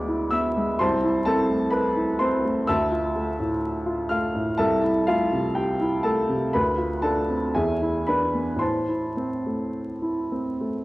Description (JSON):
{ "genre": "classical, romantic character piece for solo piano", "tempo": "52-64 BPM", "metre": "4/4", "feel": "rubato", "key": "A minor", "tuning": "A4 = 439 Hz", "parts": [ { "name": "warm baby grand piano", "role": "solo", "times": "0.0-10.8 s", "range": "C2 to F6", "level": "-22 LUFS", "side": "equal", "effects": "none" } ], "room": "wet scoring stage reverb, RT60 1.8 s", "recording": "worn, warbling old tape, cassette tape, vinyl crackle, warbly pitch drift", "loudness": "-22 LUFS", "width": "side -19 dB against mid", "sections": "0.0-10.8 A section", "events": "none", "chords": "0.0 E7/D; 0.8 Am/C; 2.7 Dm; 4.6 Am/C; 6.5 Dm7; 7.5 E7; 8.6 Am" }